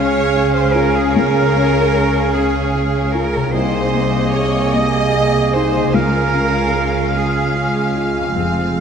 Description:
cinematic; 50 BPM (dotted quarters); 6/8; rubato; A4 = 439 Hz
rich cello; melody; 0.0-7.9 s; Ab4 to Eb5; -23 LUFS; right 3 dB
rich studio violin section; melody; 0.0-8.8 s; Db5 to F5; -27 LUFS; left 6 dB
bright clarinet; second line; 0.0-8.8 s; Bb3 to Db4; -28 LUFS; left 2 dB
bright oboe; second line; 0.0-8.8 s; Eb5 to F5; -24 LUFS; right 1 dB
flute section; second line; 0.0-8.8 s; Ab5; -27 LUFS; right 2 dB
rich studio violin section; second line; 0.0-8.8 s; C4 to Eb5; -25 LUFS; left 1 dB
felt-muted upright piano; accompaniment; 0.0-8.8 s; C2 to Ab4; -23 LUFS; left 3 dB
rich studio viola section; accompaniment; 0.0-8.8 s; Bb3 to Ab4; -25 LUFS; right 4 dB
warm French horn section; sustained chords; 0.0-8.8 s; Ab3 to Ab4; -22 LUFS; right 2 dB
concert harp; arpeggios; 0.0-8.8 s; F2 to Ab4; -27 LUFS; left 7 dB
rich studio cello section; bass; 0.0-8.8 s; F2 to Db3; -23 LUFS; right 3 dB
warm studio double bass section; bass; 0.0-8.8 s; F1 to Db2; -23 LUFS; right 2 dB
wet scoring stage reverb, RT60 1.6 s; faint mains hum; -14 LUFS; side -7 dB against mid
0.0-8.8 A section
0.0 Db; 3.5 Abadd9/C; 5.9 Db

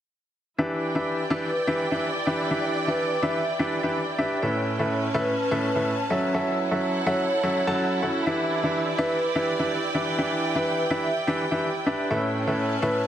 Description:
house; 125 BPM; 4/4; swing 54% on 16ths; E dorian; A4 = 440 Hz
clear baby grand piano; riff; 0.6-13.0 s; A2 to A5; -24 LUFS; equal; dub echo
rich studio string section; texture; 0.6-13.1 s; C#4 to A5; -29 LUFS; right 2 dB
vibraphone with soft mallets; melody; 1.3-13.1 s; B4 to E5; -30 LUFS; equal; vintage 12-bit sampler grit, dub echo
moderate lush hall reverb, RT60 2.3 s; heavily compressed radio sound; -23 LUFS; side -10 dB against mid
0.6-13.1 A section
0.6 Em7; 4.4 Aadd9; 6.1 F#m7; 8.3 Em7; 12.1 Aadd9

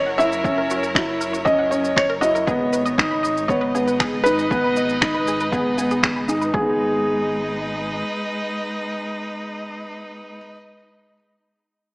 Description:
piano and strings electronica; 118 BPM; 4/4; straight; G# minor; A4 = 440 Hz
felt-muted upright piano; melody; 0.0-10.4 s; G#4 to E5; -23 LUFS; equal
bright string quartet; sustained chords; 0.0-10.6 s; F#3 to D#5; -27 LUFS; equal; sidechain pumping
dark upright piano; riff; 0.0-10.5 s; G#3 to G#4; -22 LUFS; equal
round analog bass; bass; 0.0-8.0 s; F#1 to G#1; -34 LUFS; equal; sidechain pumping
wide unison pluck; arpeggios; 0.1-6.8 s; F#4 to B5; -28 LUFS; equal; sidechain pumping, digital delay
electronic shaker and finger snaps; drums; 0.2-6.5 s; -24 LUFS; equal; overdrive
electronic kick drum; drums; 0.4-6.6 s; -28 LUFS; equal; overdrive
moderate echo chamber reverb, RT60 2.0 s; small speaker sound; -18 LUFS; side -35 dB against mid
0.0-6.5 A section; 6.5-10.6 B section
drop 0.0-6.5
0.0 F#7; 2.5 G#m

